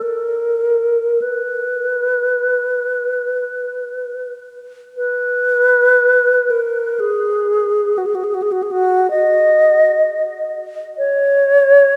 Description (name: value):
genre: classical, free, expressive piece for unaccompanied alto flute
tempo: 38-68 BPM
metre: 3/4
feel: rubato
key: unclear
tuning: A4 = 441 Hz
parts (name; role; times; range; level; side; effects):
- alto flute; solo; 0.0-12.0 s; F#4 to D#5; -16 LUFS; equal; none
room: moderate cathedral reverb, RT60 4.4 s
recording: none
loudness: -16 LUFS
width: mono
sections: 0.0-5.0 A section; 5.0-12.0 B section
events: none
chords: none